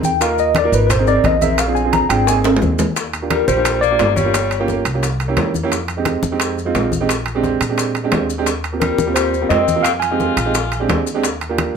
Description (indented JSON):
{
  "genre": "Afro-Cuban jazz",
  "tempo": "174 BPM",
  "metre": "4/4",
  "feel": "straight",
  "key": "Eb major",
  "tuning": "A4 = 440 Hz",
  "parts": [
    { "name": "tine electric piano", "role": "melody", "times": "0.0-4.6, 8.8-11.0 s", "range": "Bb4 to Bb5", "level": "-18 LUFS", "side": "left 1 dB", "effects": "overdrive, medium stereo tremolo" },
    { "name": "warm upright piano", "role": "accompaniment", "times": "0.0-11.7 s", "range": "Ab3 to Bb4", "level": "-20 LUFS", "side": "right 5 dB", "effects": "none" },
    { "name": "upright bass", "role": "bass", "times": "0.0-11.7 s", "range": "G1 to Bb2", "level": "-22 LUFS", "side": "equal", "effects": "none" },
    { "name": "bongos", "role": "percussion", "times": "0.0-11.8 s", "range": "none", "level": "-27 LUFS", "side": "left 7 dB", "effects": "none" },
    { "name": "congas", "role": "percussion", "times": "0.0-11.8 s", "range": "none", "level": "-24 LUFS", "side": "left 4 dB", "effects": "none" },
    { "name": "maracas", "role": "percussion", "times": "0.0-11.8 s", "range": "none", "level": "-29 LUFS", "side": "left 8 dB", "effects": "none" },
    { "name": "timbales", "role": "percussion", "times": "0.2-11.8 s", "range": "none", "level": "-23 LUFS", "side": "right 4 dB", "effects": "none" },
    { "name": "bright tenor saxophone", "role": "second line", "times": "3.3-4.6, 8.8-11.0 s", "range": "G3 to F4", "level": "-23 LUFS", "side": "left 7 dB", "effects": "none" }
  ],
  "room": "moderate studio ambience, RT60 0.5 s",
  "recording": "none",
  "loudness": "-14 LUFS",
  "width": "side -6 dB against mid",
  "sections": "0.0-3.0 A section; 3.0-11.8 B section",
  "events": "tine electric piano solo 0.0-3.0; drum fill 2.4-3.0",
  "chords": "0.2 Ebsus2; 0.9 Abadd9; 1.6 Bb7; 2.3 Abadd9; 3.0 Ebmaj9; 4.3 Gm7b5; 5.0 C7b9; 5.7 Fm9; 7.1 Bb13; 8.5 Eb69; 9.9 Fm9; 10.5 Bb13; 11.2 Ebmaj9"
}